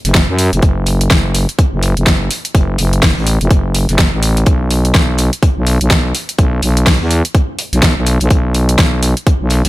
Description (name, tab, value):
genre	bass house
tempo	125 BPM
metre	4/4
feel	swing 60% on 16ths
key	F# minor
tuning	A4 = 440 Hz
part	growling FM bass	bass	0.0-9.7 s	F#1 to F#2	-13 LUFS	equal	tube saturation, sidechain pumping
part	big-room dance drum kit	drums	0.0-9.7 s	hi-hat, snare drum	-16 LUFS	equal	overdrive
part	cloth-damped thuddy drum kit	drums	0.0-9.7 s	hi-hat, snare drum	-28 LUFS	left 2 dB	none
part	electronic kick drum	drums	0.1-9.4 s	none	-13 LUFS	equal	none
room	digital ambience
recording	none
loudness	-11 LUFS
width	side -17 dB against mid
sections	0.0-9.7 A section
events	none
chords	none